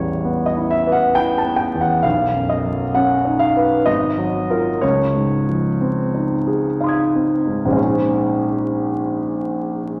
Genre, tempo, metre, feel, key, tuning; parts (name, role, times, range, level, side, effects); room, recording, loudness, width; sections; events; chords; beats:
classical, impressionist solo piano; 60-67 BPM; 3/4; rubato; A4 = 438 Hz
warm concert grand piano; solo; 0.0-10.0 s; Ab1 to Ab6; -19 LUFS; equal
wet recital hall reverb, RT60 1.6 s; vinyl crackle; -19 LUFS; mono
0.0-7.8 A section; 7.8-10.0 B section
0.0 A9; 2.0 Cbadd9; 3.9 Absus2; 4.8 Dbmaj9; 7.8 Bbm11
0.23 1.14 | 2.05 2.95 3.86 | 4.82 5.80 6.78 | 7.77 8.75 9.70